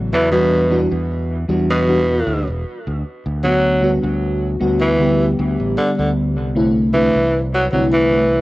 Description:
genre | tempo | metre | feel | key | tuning
vaporwave | 77 BPM | 4/4 | swing 53% on 16ths | unclear | A4 = 440 Hz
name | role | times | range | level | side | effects
FM electric piano with soft pad layer | accompaniment | 0.0-8.2 s | C#3 to G4 | -18 LUFS | left 1 dB | analog chorus, plate reverb, tape echo
modern bright fingered electric bass | bass | 0.0-8.4 s | E1 to E2 | -21 LUFS | equal | none
raspy tenor saxophone | melody | 0.1-8.4 s | B2 to F#3 | -18 LUFS | equal | cassette tape, tape echo
room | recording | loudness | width
wet studio ambience, RT60 0.5 s | home recording on cassette | -15 LUFS | side -18 dB against mid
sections
0.0-8.4 A section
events
none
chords
0.3 Em9; 3.4 Gmaj7/D; 6.6 C69

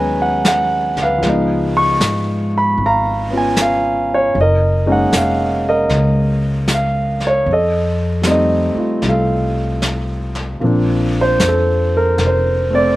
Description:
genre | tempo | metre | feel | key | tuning
jazz ballad | 77 BPM | 4/4 | swing 66% on 8ths | unclear | A4 = 436 Hz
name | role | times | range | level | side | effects
warm concert grand piano | accompaniment | 0.0-13.0 s | E#3 to C#6 | -15 LUFS | right 1 dB | none
upright bass | bass | 0.0-13.0 s | E#1 to G#2 | -19 LUFS | left 1 dB | none
vintage brush drum kit | drums | 0.4-13.0 s | brushed snare drum, hi-hat, snare drum | -23 LUFS | equal | none
room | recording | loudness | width
little or no reverb | none | -13 LUFS | side -17 dB against mid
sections
0.0-10.6 A section; 10.6-13.0 B section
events
none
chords
0.0 G#m7; 1.2 C#9; 4.4 F#69; 7.5 F7; 10.6 Bbmaj9

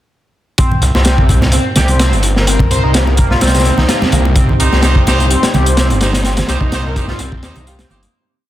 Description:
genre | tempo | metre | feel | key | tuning
breakbeat, breaks | 127 BPM | 4/4 | swing 54% on 16ths | C minor | A4 = 440 Hz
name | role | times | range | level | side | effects
deep dark ambient pad | sustained chords | 1.7-8.1 s | C4 to G4 | -24 LUFS | right 2 dB | chorus, built-in reverb, sidechain pumping
overdriven synth lead | riff | 0.6-8.0 s | Bb3 to C5 | -20 LUFS | equal | distortion, phaser, analog chorus, tape echo
crunchy breakbeat drum kit | drums | 0.6-8.1 s | hi-hat, kick drum, snare drum | -14 LUFS | equal | none
bongos and congas | percussion | 0.6-8.1 s | none | -20 LUFS | right 1 dB | none
detuned saw bass | bass | 0.8-8.1 s | G1 to Eb2 | -14 LUFS | equal | none
breathy flute-like synth lead | melody | 1.9-7.9 s | G4 to C5 | -24 LUFS | left 2 dB | chorus, old record sound, cassette tape, tape echo
bright horn section | stabs | 4.6-8.0 s | Eb4 to C5 | -20 LUFS | right 2 dB | tape echo
room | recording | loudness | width
light reverb | dense, heavily limited modern master | -10 LUFS | side -13 dB against mid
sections
0.6-8.1 drop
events
drop 0.6-8.1; fade-out 5.6-8.1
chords
0.6 Cm

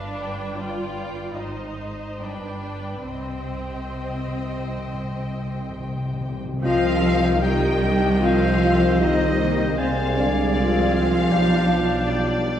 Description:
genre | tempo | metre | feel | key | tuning
classical, slow romantic movement for symphony orchestra | 65-80 BPM | 4/4 | rubato | C minor | A4 = 440 Hz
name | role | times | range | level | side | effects
warm studio violin section | melody | 0.0-12.6 s | C5 to G5 | -32 LUFS | left 3 dB | none
rich studio violin section | second line | 0.0-12.4 s | B4 to G5 | -32 LUFS | left 1 dB | none
warm studio viola section | accompaniment | 0.0-12.6 s | Eb3 to F4 | -30 LUFS | right 1 dB | none
dark studio cello section | bass | 0.0-12.4 s | G2 to G3 | -27 LUFS | right 1 dB | none
warm studio double bass section | bass | 0.0-12.6 s | G1 to C2 | -28 LUFS | right 1 dB | none
timpani | percussion | 3.1-7.8 s | C3 | -32 LUFS | left 2 dB | none
large flute ensemble | second line | 6.6-12.4 s | C5 to G5 | -30 LUFS | left 3 dB | none
warm clarinet | second line | 6.6-12.6 s | D5 to Eb5 | -32 LUFS | equal | none
warm oboe | second line | 6.6-12.6 s | G5 to Ab5 | -32 LUFS | left 1 dB | none
mellow French horn section | sustained chords | 6.6-12.4 s | C4 to G4 | -24 LUFS | left 2 dB | none
warm tuba | bass | 6.6-12.6 s | B1 to C2 | -28 LUFS | right 1 dB | none
room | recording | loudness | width
wet scoring stage reverb, RT60 1.6 s | heard from further back in the room | -20 LUFS | side -10 dB against mid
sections
0.0-6.6 A section; 6.6-12.6 A section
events
timpani fill 3.1-6.6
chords
0.0 G; 1.4 Ab; 2.2 G; 3.1 Cm; 9.8 Dm7b5/C; 11.3 G7/B

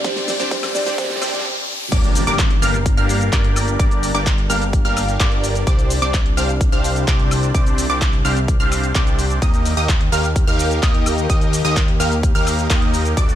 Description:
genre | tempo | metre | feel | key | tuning
EDM, festival progressive house | 128 BPM | 4/4 | straight | G minor | A4 = 440 Hz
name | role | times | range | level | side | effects
buzzing marimba with soft mallets | melody | 0.0-1.4 s | C5 to D5 | -27 LUFS | right 2 dB | tape echo
felt-muted upright piano | accompaniment | 0.0-1.4 s | G3 to G4 | -32 LUFS | right 4 dB | sidechain pumping, tape echo
lush unison pad | sustained chords | 0.0-13.3 s | C3 to Bb4 | -29 LUFS | left 1 dB | chorus, sidechain pumping
supersaw stab | riff | 0.0-13.3 s | A3 to F5 | -23 LUFS | equal | phaser, sidechain pumping, tape echo
fat analog bass | bass | 0.0-13.3 s | G1 to Eb2 | -21 LUFS | equal | sidechain pumping
big-room dance drum kit | drums | 0.0-13.3 s | crash cymbal, handclaps, hi-hat, shaker, snare drum, woodblock | -25 LUFS | left 1 dB | none
electronic kick drum | drums | 0.0-13.3 s | none | -17 LUFS | equal | high-pass filter on kick
riser and impact | sound effects | 0.0-3.8 s | none | -25 LUFS | equal | none
wide unison pluck | arpeggios | 1.9-13.3 s | D6 to F6 | -26 LUFS | right 1 dB | sidechain pumping, tape echo
room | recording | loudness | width
light reverb, digital ambience | high-pass filter | -15 LUFS | side -11 dB against mid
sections
0.0-1.9 A section; 1.9-13.3 B section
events
build-up 0.0-1.9; drum fill 0.0-1.5; riser 0.0-1.9; stop 1.5-1.9; drop 1.9-13.3; impact 1.9-3.8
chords
0.0 Csus2; 1.9 Gm; 5.7 Csus2; 9.4 Eb

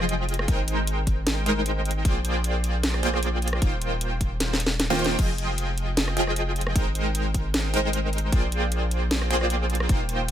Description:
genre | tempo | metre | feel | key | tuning
future bass | 153 BPM | 4/4 | swing 54% on 16ths, half-time | unclear | A4 = 443 Hz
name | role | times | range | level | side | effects
supersaw stab | riff | 0.0-10.3 s | Eb3 to G5 | -26 LUFS | right 1 dB | wide subtle chorus, sidechain pumping, ping-pong delay
saturated sub bass | bass | 0.0-10.3 s | Eb1 to Bb1 | -27 LUFS | equal | sidechain pumping
trap drum kit | drums | 0.0-10.3 s | crash cymbal, hi-hat, rim click, snare drum | -27 LUFS | equal | none
electronic kick drum | drums | 0.5-10.0 s | none | -24 LUFS | equal | none
room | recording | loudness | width
little or no reverb | none | -22 LUFS | side -10 dB against mid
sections
0.0-10.3 A section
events
drum fill 4.4-5.2; kick drops out 4.8-5.2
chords
0.5 Abmaj9; 2.0 Bb13; 3.6 Eb69; 5.2 Fm9; 6.8 Abmaj9; 8.3 Bb13

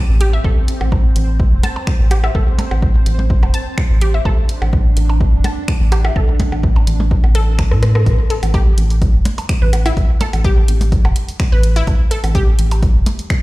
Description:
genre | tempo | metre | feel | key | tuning
minimal techno | 126 BPM | 4/4 | swing 53% on 16ths | A minor | A4 = 439 Hz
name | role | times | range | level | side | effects
pulsing gated texture | texture | 0.0-8.1 s | C4 to C5 | -28 LUFS | right 2 dB | chorus, built-in reverb, sidechain pumping
rubbery square bass | bass | 0.1-13.0 s | E1 to A2 | -15 LUFS | equal | sidechain pumping
resonant blip pluck | riff | 0.2-12.4 s | E4 to A5 | -24 LUFS | left 1 dB | chorus, sidechain pumping, dub echo
punchy analog drum machine | drums | 0.2-13.4 s | finger snaps, hi-hat, rim click | -27 LUFS | equal | overdrive, studio reverb
electronic kick drum | drums | 0.4-13.4 s | none | -15 LUFS | equal | overdrive, studio reverb
percussion blips | percussion | 0.8-13.2 s | none | -25 LUFS | right 1 dB | overdrive, studio reverb, digital delay
room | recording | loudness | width
little or no reverb | played on a big sound system in a bare room, large studio reverb | -12 LUFS | side -19 dB against mid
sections
0.0-8.1 A section; 8.1-13.4 B section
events
drum fill 7.7-8.1; band accent 7.9; drop 8.1-13.4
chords
0.0 Am; 8.1 N.C.

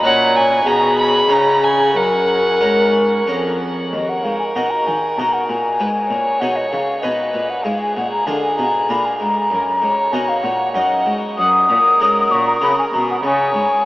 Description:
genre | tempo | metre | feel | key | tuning
classical, baroque-style sonata movement with continuo | 96 BPM | 3/4 | rubato | F# major, Eb minor from 3.9 s | A4 = 440 Hz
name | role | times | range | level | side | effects
mellow hollow concert flute | melody | 0.0-13.9 s | G#4 to D#6 | -16 LUFS | left 1 dB | none
rich violin | second line | 0.0-13.8 s | Ab4 to B5 | -20 LUFS | right 1 dB | none
harpsichord | accompaniment | 0.0-13.8 s | Eb2 to C#5 | -25 LUFS | equal | none
rich cello | bass | 0.0-13.6 s | Eb2 to Eb3 | -25 LUFS | equal | none
room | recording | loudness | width
wet huge ambient reverb, RT60 8.0 s | in a vast, echoing space, AM radio sound | -14 LUFS | side -17 dB against mid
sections
0.0-3.9 A section; 3.9-13.9 A section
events
none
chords
0.0 F#/A#; 0.7 G#m/B; 1.3 C#7; 1.9 F#; 3.9 Ebm; 5.8 Abm; 7.7 Bb7/Ab; 9.5 Ebm/Gb; 11.4 F#; 13.2 C#5

